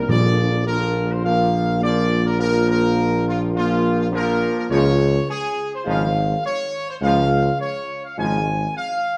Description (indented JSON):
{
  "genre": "classical",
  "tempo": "104 BPM",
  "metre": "4/4",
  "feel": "straight",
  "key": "unclear",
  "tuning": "A4 = 441 Hz",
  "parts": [
    { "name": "mellow trumpet section", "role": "melody", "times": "0.0-9.2 s", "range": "F4 to Ab5", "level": "-25 LUFS", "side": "equal", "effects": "none" },
    { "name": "dark French horn section", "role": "sustained chords", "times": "0.0-8.4 s", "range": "Ab3 to F4", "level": "-28 LUFS", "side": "equal", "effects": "none" },
    { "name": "warm trombone section", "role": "sustained chords", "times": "0.0-8.4 s", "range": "Bb2 to F3", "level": "-29 LUFS", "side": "equal", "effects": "none" },
    { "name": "warm tuba", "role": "bass", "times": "0.0-8.7 s", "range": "Ab1 to Db2", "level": "-24 LUFS", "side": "equal", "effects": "none" },
    { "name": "timpani", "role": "percussion", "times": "0.1-0.9 s", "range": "Bb2", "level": "-25 LUFS", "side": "equal", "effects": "none" }
  ],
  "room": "wet recital hall reverb, RT60 1.5 s",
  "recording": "dark, warm production",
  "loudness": "-20 LUFS",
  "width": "mono",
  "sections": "0.0-9.2 A section",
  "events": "none",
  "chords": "0.1 Bb; 4.7 Db"
}